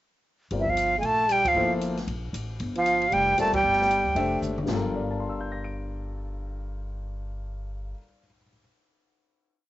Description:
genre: modal jazz.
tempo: 230 BPM.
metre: 4/4.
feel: swing 61% on 8ths.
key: G dorian.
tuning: A4 = 440 Hz.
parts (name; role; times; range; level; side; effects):
warm concert grand piano; accompaniment; 0.5-8.6 s; G2 to D7; -31 LUFS; left 3 dB; cassette tape, plate reverb.
upright bass; bass; 0.5-7.9 s; F1 to D2; -34 LUFS; equal; none.
open jazz drum kit; drums; 0.5-4.8 s; china cymbal, hi-hat, kick drum, ride cymbal, snare drum, toms; -36 LUFS; left 1 dB; cassette tape.
breathy bright concert flute; melody; 0.6-4.4 s; E5 to A5; -22 LUFS; equal; plate reverb.
brilliant trombone; second line; 0.6-4.4 s; E3 to A3; -29 LUFS; right 3 dB; cassette tape, plate reverb.
room: light reverb.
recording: home recording on cassette, nothing above 7.7 kHz.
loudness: -23 LUFS.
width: side -15 dB against mid.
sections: 0.5-4.7 A section; 4.7-6.8 final chord.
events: band accent 1.4, 3.5; drum fill 4.4.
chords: 0.5 Gm9; 2.6 Csus4; 4.7 Gm9.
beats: | 0.52 0.78 1.04 1.30 | 1.56 1.82 2.08 2.34 | 2.60 2.86 3.12 3.38 | 3.64 3.90 4.16 4.42 | 4.68 4.94 5.20 5.46 | 5.73 5.99 6.25 6.51.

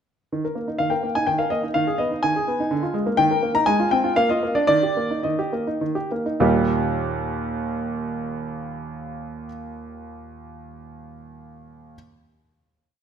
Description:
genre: classical-period piano sonatina.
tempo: 103-128 BPM.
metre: 3/4.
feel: rubato.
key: Eb major.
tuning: A4 = 440 Hz.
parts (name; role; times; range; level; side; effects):
clear concert grand piano; solo; 0.3-12.0 s; Eb2 to Bb5; -21 LUFS; equal; none.
room: wet recital hall reverb, RT60 1.5 s.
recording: none.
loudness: -20 LUFS.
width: side -8 dB against mid.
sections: 0.3-6.4 A section; 6.4-9.8 final chord.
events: slowing down 2.5-6.4.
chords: 0.3 Eb5; 1.7 Abm/Eb; 2.7 Bb7/D; 3.2 Eb; 3.7 Fm/Ab; 4.2 Bb; 4.7 Eb.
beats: | 0.32 0.80 1.27 | 1.74 2.23 2.71 | 3.18 3.66 4.16 | 4.69 5.24 5.80 | 6.38 6.95 7.51 | 8.07 8.63 9.19.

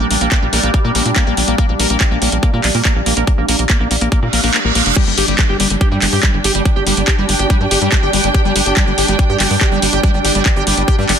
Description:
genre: psychedelic trance.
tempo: 142 BPM.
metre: 4/4.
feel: straight.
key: G minor.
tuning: A4 = 440 Hz.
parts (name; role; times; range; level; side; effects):
evolving wavetable pad; sustained chords; 0.0-11.2 s; G3 to D4; -21 LUFS; right 1 dB; phaser, built-in reverb, vintage 12-bit sampler grit, sidechain pumping.
liquid acid bass; riff; 0.0-11.1 s; G3 to G4; -19 LUFS; moving between left 8 dB and right 7 dB; chorus, auto-pan, sidechain pumping, dub echo.
tight sequencer bass; bass; 0.0-11.2 s; F1 to Bb2; -19 LUFS; equal; none.
drum and bass drum kit; drums; 0.1-11.2 s; crash cymbal, handclaps, hi-hat; -17 LUFS; equal; none.
electronic kick drum; drums; 0.3-11.0 s; none; -14 LUFS; equal; overdrive.
vowel-sweep wobble bass; second line; 0.5-0.8 s; G3; -37 LUFS; left 1 dB; none.
reverse cymbal and downlifter; sound effects; 4.3-8.3 s; none; -22 LUFS; right 5 dB; none.
dark chamber string section; texture; 5.0-11.2 s; D4 to G5; -21 LUFS; right 3 dB; sidechain pumping.
room: digital ambience.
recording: dense, heavily limited modern master.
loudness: -12 LUFS.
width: side -8 dB against mid.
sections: 0.0-5.0 A section; 5.0-11.2 B section.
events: reverse cymbal 4.3-5.0; kick drops out 4.5-5.0; drop 5.0-11.2.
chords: 0.0 Bb5; 5.0 G5.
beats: 0.32 0.74 1.16 | 1.58 2.01 2.43 2.85 | 3.27 3.70 4.12 4.54 | 4.96 5.39 5.81 6.23 | 6.66 7.08 7.50 7.92 | 8.35 8.77 9.19 9.61 | 10.04 10.46 10.88.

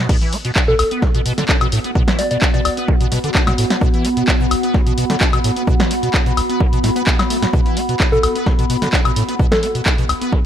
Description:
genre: acid house.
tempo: 129 BPM.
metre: 4/4.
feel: straight.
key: B minor.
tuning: A4 = 441 Hz.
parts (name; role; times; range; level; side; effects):
acid bass, square; riff; 0.0-10.4 s; B1 to D4; -21 LUFS; equal; ensemble chorus, cassette tape, sidechain pumping.
electronic kick drum; drums; 0.1-10.4 s; none; -17 LUFS; equal; none.
punchy analog drum machine; drums; 0.1-10.3 s; crash cymbal, handclaps, hi-hat, snare drum, woodblock; -20 LUFS; left 1 dB; none.
warbly tape-like pad; texture; 0.8-10.5 s; B3 to B5; -22 LUFS; equal; chorus, built-in reverb, sidechain pumping.
soft struck synth lead; melody; 0.7-2.7, 8.1-9.7 s; A4 to D5; -22 LUFS; equal; chorus, tremolo, tape echo.
room: light reverb.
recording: none.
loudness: -14 LUFS.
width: side -10 dB against mid.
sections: 0.1-10.5 A section.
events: drop 0.1-10.5.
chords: 0.1 B5.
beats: | 0.09 0.56 1.02 1.49 | 1.95 2.42 2.88 3.35 | 3.81 4.28 4.74 5.21 | 5.67 6.14 6.61 7.07 | 7.54 8.00 8.46 8.93 | 9.39 9.86 10.32.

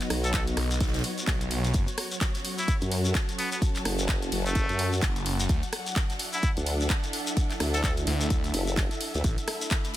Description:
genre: bass house.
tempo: 128 BPM.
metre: 4/4.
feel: swing 59% on 16ths.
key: F# minor.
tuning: A4 = 440 Hz.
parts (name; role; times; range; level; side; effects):
sweeping resonant pad; sustained chords; 0.0-10.0 s; F#3 to A4; -37 LUFS; equal; chorus, sidechain pumping.
garage drum kit; drums; 0.0-10.0 s; handclaps, hi-hat, ride cymbal, rim click; -33 LUFS; equal; none.
natural country drum kit; drums; 0.0-10.0 s; ride cymbal, snare drum; -43 LUFS; left 2 dB; none.
shekere; percussion; 0.0-9.9 s; none; -36 LUFS; left 2 dB; none.
warm symphonic string section; texture; 0.0-10.0 s; B3 to D6; -37 LUFS; left 1 dB; sidechain pumping.
formant-sweep wobble bass; bass; 0.1-9.2 s; F#1 to F#2; -28 LUFS; equal; chorus, tube saturation, sidechain pumping.
trumpet with straight mute; melody; 0.2-7.9 s; A3 to A4; -35 LUFS; equal; vintage 12-bit sampler grit, digital delay.
electronic kick drum; drums; 0.3-9.8 s; none; -27 LUFS; equal; none.
phased detuned saw bass; bass; 0.6-1.9, 5.0-9.4 s; F#1 to D2; -28 LUFS; equal; phaser, sidechain pumping.
room: light reverb, studio reverb.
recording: none.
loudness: -25 LUFS.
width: side -14 dB against mid.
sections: 0.0-10.0 A section.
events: none.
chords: 0.0 B; 1.7 F#m; 5.5 Dadd9; 9.2 Asus4.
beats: 0.34 0.81 1.27 | 1.74 2.21 2.68 3.15 | 3.62 4.09 4.55 5.02 | 5.49 5.96 6.43 6.90 | 7.37 7.84 8.30 8.77 | 9.24 9.71.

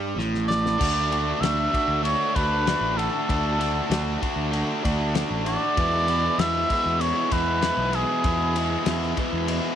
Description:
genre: classic rock.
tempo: 97 BPM.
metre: 4/4.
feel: straight.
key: unclear.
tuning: A4 = 444 Hz.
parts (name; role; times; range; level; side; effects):
overdriven electric guitar; riff; 0.0-9.8 s; E2 to F#4; -26 LUFS; equal; none.
fuzz fingered electric bass; bass; 0.0-9.6 s; A1 to G2; -28 LUFS; right 1 dB; overdrive.
damped 70s drum kit; drums; 0.2-9.6 s; crash cymbal, kick drum, ride cymbal, snare drum; -30 LUFS; left 2 dB; none.
trumpet with cup mute; melody; 0.5-9.2 s; G#4 to E5; -25 LUFS; equal; none.
room: studio ambience.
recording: 1960s-style stereo.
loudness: -21 LUFS.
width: side -9 dB against mid.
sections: 0.8-9.8 A section.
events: drum fill 0.2-0.8.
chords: 0.0 A5; 0.8 D; 5.8 E.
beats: 0.18 | 0.80 1.43 2.05 2.67 | 3.29 3.91 4.53 5.15 | 5.77 6.39 7.01 7.63 | 8.25 8.87 9.49.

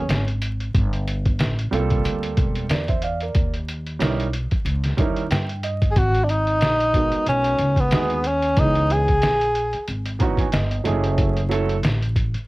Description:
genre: hip hop, jazz-hop.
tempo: 92 BPM.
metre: 4/4.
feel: swing 57% on 16ths.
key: G# minor from 6.0 s.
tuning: A4 = 440 Hz.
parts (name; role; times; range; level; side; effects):
mellow tenor saxophone; melody; 0.0-0.4, 5.9-9.9 s; B3 to G#4; -20 LUFS; equal; cassette tape.
upright bass; bass; 0.0-12.4 s; E1 to G2; -24 LUFS; equal; none.
lo-fi sampler-style drum kit; drums; 0.1-12.5 s; hi-hat, kick drum, snare drum; -23 LUFS; equal; none.
dark concert grand piano; accompaniment; 1.7-11.8 s; E3 to A#5; -26 LUFS; right 4 dB; none.
room: light reverb.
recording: home recording on cassette, vinyl crackle.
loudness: -19 LUFS.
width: side -20 dB against mid.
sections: 0.0-6.0 A section; 6.0-12.5 B section.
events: grand piano fill 5.0-6.0, 9.9-11.2.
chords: 0.0 G#sus4; 0.7 Gm11; 3.4 D#7b9; 6.0 G#m9; 8.6 C#m9; 10.9 F#m9.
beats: 0.09 | 0.74 1.40 2.05 2.70 | 3.35 4.00 4.66 5.31 | 5.96 6.61 7.27 7.92 | 8.57 9.22 9.88 10.53 | 11.18 11.83.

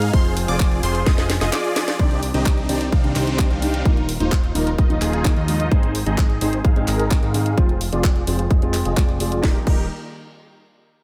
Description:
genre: EDM, festival progressive house.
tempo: 129 BPM.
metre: 4/4.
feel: straight.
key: Eb major.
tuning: A4 = 442 Hz.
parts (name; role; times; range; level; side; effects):
lush unison pad; sustained chords; 0.0-2.0 s; F3 to Ab4; -32 LUFS; equal; chorus, sidechain pumping.
unison pluck; arpeggios; 0.0-2.0 s; C6 to F6; -32 LUFS; equal; phaser, sidechain pumping, tape echo.
supersaw chords; riff; 0.0-9.8 s; C4 to F5; -28 LUFS; equal; sidechain pumping, low-pass filter, tape echo.
fat analog bass; bass; 0.0-9.9 s; Eb1 to Ab2; -26 LUFS; equal; sidechain pumping.
house drum kit; drums; 0.0-9.8 s; crash cymbal, handclaps, hi-hat, ride cymbal, snare drum; -30 LUFS; equal; none.
electronic kick drum; drums; 0.1-9.8 s; none; -20 LUFS; equal; none.
felt-muted upright piano; accompaniment; 2.0-9.9 s; Ab2 to F4; -28 LUFS; equal; sidechain pumping, tape echo.
room: light reverb, digital ambience.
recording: none.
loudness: -19 LUFS.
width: mono.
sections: 0.0-2.0 A section; 2.0-9.4 B section; 9.4-11.0 C section.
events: drop 0.0-2.0; drum fill 1.1-2.0; filter sweep on supersaw synth 2.0-9.4.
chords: 0.1 Fm; 2.0 Cmadd9; 3.9 Ebsus2; 5.7 Ab; 7.6 Fm; 9.4 Eb.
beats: | 0.13 0.60 1.06 1.53 | 2.00 2.46 2.92 3.39 | 3.85 4.32 4.79 5.25 | 5.72 6.18 6.65 7.11 | 7.58 8.04 8.51 8.97 | 9.44.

